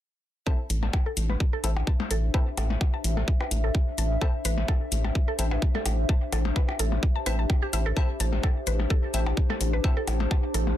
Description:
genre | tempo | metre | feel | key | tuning
minimal techno | 128 BPM | 4/4 | swing 54% on 16ths | A minor | A4 = 443 Hz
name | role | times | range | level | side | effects
mallet-like synth pluck | riff | 0.5-10.6 s | G4 to A5 | -35 LUFS | right 1 dB | chorus, phaser, sidechain pumping, ping-pong delay
wavetable chord stab | stabs | 0.5-10.0 s | C4 to A4 | -38 LUFS | left 4 dB | dub echo
electronic kick drum | drums | 0.5-10.4 s | none | -24 LUFS | equal | none
warbly tape-like pad | texture | 1.2-10.8 s | D4 to A5 | -34 LUFS | left 2 dB | chorus, built-in reverb, sidechain pumping
rubbery square bass | bass | 0.7-10.7 s | A1 | -26 LUFS | equal | sidechain pumping
electronic hi-hat | drums | 0.7-10.6 s | none | -33 LUFS | left 3 dB | none
percussion blips | percussion | 0.8-10.8 s | none | -35 LUFS | left 5 dB | dub echo
room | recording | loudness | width
little or no reverb | dense, heavily limited modern master | -24 LUFS | side -12 dB against mid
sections
0.5-10.8 A section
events
filter sweep on synth arpeggio sound 0.5-10.8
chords
0.5 Am

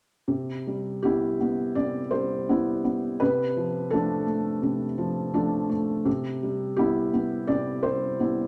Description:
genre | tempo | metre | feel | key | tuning
neoclassical minimalist piano | 84 BPM | 4/4 | rubato | C major | A4 = 440 Hz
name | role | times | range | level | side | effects
felt-muted upright piano | solo | 0.3-8.5 s | C3 to D5 | -26 LUFS | equal | none
room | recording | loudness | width
wet large studio reverb, RT60 1.3 s | none | -27 LUFS | mono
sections
0.3-8.5 A section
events
none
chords
0.3 Cmaj7; 3.2 Dm7/C; 6.1 Cmaj7

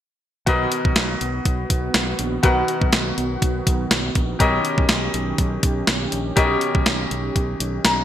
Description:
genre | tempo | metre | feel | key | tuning
1980s-style pop | 122 BPM | 4/4 | swing 55% on 16ths | B major | A4 = 445 Hz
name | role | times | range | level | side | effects
bright grand piano | accompaniment | 0.5-8.0 s | B2 to A#5 | -23 LUFS | left 3 dB | none
brassy analog pad | sustained chords | 0.5-8.0 s | D#3 to G4 | -28 LUFS | right 2 dB | chorus
fingered electric bass | bass | 0.5-8.0 s | A#1 to B1 | -26 LUFS | equal | none
clean 12-bit digital drum machine | drums | 0.5-8.0 s | hi-hat, kick drum, snare drum | -20 LUFS | equal | gated reverb
room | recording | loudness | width
moderate plate reverb, RT60 1.8 s, digital ambience | bright 1980s-style digital production | -18 LUFS | side -11 dB against mid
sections
0.5-8.0 A section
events
grand piano fill 7.6-8.0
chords
0.5 Bmaj7; 4.4 D#7

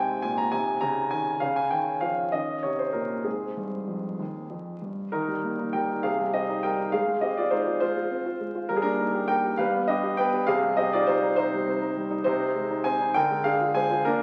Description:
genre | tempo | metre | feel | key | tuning
classical-period piano sonatina | 67 BPM (dotted quarters) | 6/8 | straight | Ab major, Eb major from 5.1 s | A4 = 440 Hz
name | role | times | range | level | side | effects
warm baby grand piano | solo | 0.0-14.2 s | Eb2 to Bb5 | -26 LUFS | equal | none
room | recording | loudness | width
wet recital hall reverb, RT60 1.4 s | very old 78 rpm record, vinyl crackle, lossy compression artefacts | -26 LUFS | mono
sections
0.0-5.1 A section; 5.1-14.2 B section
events
none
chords
0.0 Ab; 0.5 Bbm11/C; 1.4 Db; 2.3 Eb5; 3.3 Ab; 5.1 Eb; 6.0 Cm; 6.9 Fm/Ab; 8.7 Eb/G; 9.6 G; 10.5 Cm; 12.3 Ab/C; 13.2 Ddim

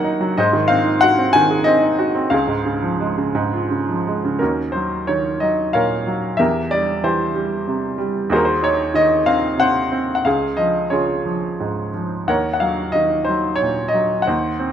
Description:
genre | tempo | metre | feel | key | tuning
classical, lyrical solo piano | 84-95 BPM | 3/4 | rubato | Eb dorian from 4.4 s | A4 = 442 Hz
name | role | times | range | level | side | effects
clear baby grand piano | solo | 0.0-14.7 s | C#2 to A#5 | -16 LUFS | equal | none
room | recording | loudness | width
light reverb | close, detailed microphones | -16 LUFS | side -9 dB against mid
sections
0.0-4.4 A section; 4.4-14.7 B section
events
none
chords
0.4 G#7; 2.3 C#; 4.4 Ebm7; 6.4 C7/E; 8.3 Ab7/Eb; 10.3 Db; 12.3 Ebm7

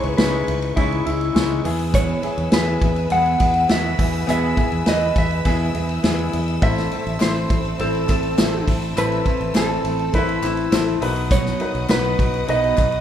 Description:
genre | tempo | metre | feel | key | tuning
piano-driven pop | 102 BPM | 4/4 | straight | E major | A4 = 440 Hz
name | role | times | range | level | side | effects
mellow electric guitar | melody | 0.0-13.0 s | E4 to F#5 | -23 LUFS | left 1 dB | digital delay
clear baby grand piano | accompaniment | 0.0-13.0 s | A2 to C#5 | -26 LUFS | left 3 dB | none
clear studio string section | sustained chords | 0.0-13.0 s | C4 to E6 | -34 LUFS | left 1 dB | none
fingerpicked steel-string acoustic guitar | riff | 0.0-13.0 s | E2 to F#4 | -29 LUFS | right 5 dB | none
fingered electric bass | bass | 0.0-13.0 s | A1 to E2 | -24 LUFS | equal | none
unplugged drum kit | drums | 0.0-13.0 s | hi-hat, kick drum, ride cymbal, snare drum | -22 LUFS | equal | none
group handclap | percussion | 7.2-12.9 s | none | -37 LUFS | left 3 dB | none
room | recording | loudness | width
moderate large studio reverb, RT60 1.4 s | band playing live in one room | -17 LUFS | side -10 dB against mid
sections
0.0-13.0 A section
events
none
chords
0.0 C#madd9; 1.6 E; 6.6 Am; 11.0 B

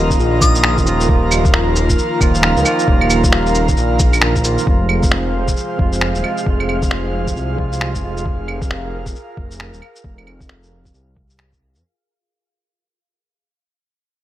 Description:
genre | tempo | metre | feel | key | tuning
future garage | 134 BPM | 4/4 | swing 61% on 16ths | F minor | A4 = 440 Hz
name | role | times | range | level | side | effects
tine electric piano | accompaniment | 0.0-8.3 s | C3 to F4 | -22 LUFS | right 3 dB | medium stereo tremolo, sidechain pumping, digital delay
airy breathy pad | sustained chords | 0.0-11.8 s | F4 to Bb5 | -22 LUFS | equal | chorus, sidechain pumping
dark detuned saw bass | bass | 0.0-11.8 s | Eb1 to F2 | -19 LUFS | equal | sidechain pumping
electronic kick drum | drums | 0.1-11.6 s | none | -16 LUFS | equal | studio reverb
electronic shaker, cabasa, finger snaps and claves | drums | 0.1-11.8 s | none | -20 LUFS | equal | studio reverb
glassy synth bell | melody | 0.4-1.1 s | Eb6 | -23 LUFS | left 4 dB | chorus, phaser, tape echo
wind-like tuned noise texture | texture | 5.6-11.8 s | F4 to F5 | -34 LUFS | right 2 dB | built-in reverb
room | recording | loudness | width
light reverb | none | -13 LUFS | side -13 dB against mid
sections
0.0-4.7 A section; 4.7-11.8 B section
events
fade-out 4.7-11.8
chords
0.0 Ebsus2; 4.7 Fm

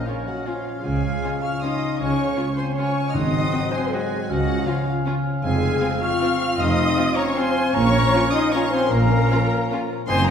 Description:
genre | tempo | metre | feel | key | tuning
classical, orchestral ballroom waltz | 156 BPM | 3/4 | uneven beats, rubato | unclear | A4 = 440 Hz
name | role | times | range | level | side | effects
warm chamber violin section | melody | 0.0-10.3 s | Db5 to F6 | -30 LUFS | left 3 dB | none
bright concert flute | second line | 0.0-10.3 s | Bb4 to Db6 | -29 LUFS | equal | none
clear clarinet | second line | 0.0-10.3 s | Bb3 to Db4 | -33 LUFS | left 1 dB | none
clear oboe | second line | 0.0-10.3 s | Eb5 to Gb5 | -32 LUFS | right 1 dB | none
warm chamber viola section | accompaniment | 0.0-10.3 s | Db4 to F5 | -27 LUFS | equal | none
dark trombone section | sustained chords | 0.0-10.3 s | Eb3 to Db4 | -31 LUFS | right 1 dB | none
mellow French horn section | sustained chords | 0.0-10.3 s | Db3 to F4 | -27 LUFS | left 2 dB | none
concert harp | arpeggios | 0.0-10.3 s | Gb2 to Db6 | -29 LUFS | left 3 dB | none
warm studio violin section | second line | 0.1-9.8 s | C4 to Gb4 | -32 LUFS | left 1 dB | none
dark tuba | bass | 0.8-10.3 s | F1 to Db2 | -29 LUFS | right 3 dB | none
rich chamber double bass section | bass | 0.8-10.3 s | F1 to Db2 | -28 LUFS | right 1 dB | none
rich symphonic cello section | bass | 0.8-10.3 s | Db2 to Db3 | -29 LUFS | right 2 dB | none
timpani | percussion | 3.1-3.7 s | Ab2 | -31 LUFS | right 1 dB | none
room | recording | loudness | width
wet scoring stage reverb, RT60 1.5 s | heard from further back in the room | -19 LUFS | side -7 dB against mid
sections
0.0-10.3 A section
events
none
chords
0.0 Bbm; 0.8 Db; 3.1 Ab7; 4.3 Db; 5.4 Fm; 7.7 Bbm

